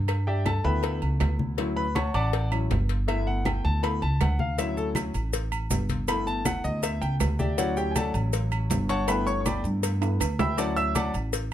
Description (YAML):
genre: latin, salsa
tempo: 160 BPM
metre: 4/4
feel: straight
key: D major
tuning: A4 = 440 Hz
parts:
  - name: upright bass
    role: bass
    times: 0.0-11.5 s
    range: G1 to G2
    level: -27 LUFS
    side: right 1 dB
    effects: none
  - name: agogo bells and timbales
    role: percussion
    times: 0.1-11.3 s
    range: none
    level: -35 LUFS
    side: right 6 dB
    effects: none
  - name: claves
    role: percussion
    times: 0.1-11.1 s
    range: none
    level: -37 LUFS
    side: right 11 dB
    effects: none
  - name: congas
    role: percussion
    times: 0.1-11.5 s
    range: none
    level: -32 LUFS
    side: left 2 dB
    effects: none
  - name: cowbell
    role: percussion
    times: 0.1-11.5 s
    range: none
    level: -34 LUFS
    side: left 11 dB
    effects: none
  - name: clear grand piano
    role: accompaniment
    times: 0.3-11.1 s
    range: F#3 to E6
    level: -29 LUFS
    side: left 2 dB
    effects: none
  - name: maracas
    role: percussion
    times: 4.6-11.5 s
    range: none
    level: -38 LUFS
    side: right 4 dB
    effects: none
room: light reverb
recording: close, detailed microphones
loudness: -24 LUFS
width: side -11 dB against mid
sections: 0.0-11.5 A section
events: grand piano solo 0.0-11.5; drum fill 10.0-10.6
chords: 0.1 G6; 1.6 Dmaj7; 3.1 G6; 4.6 Dmaj7; 6.1 G6; 7.6 Dmaj7; 9.1 G6; 10.6 Dmaj7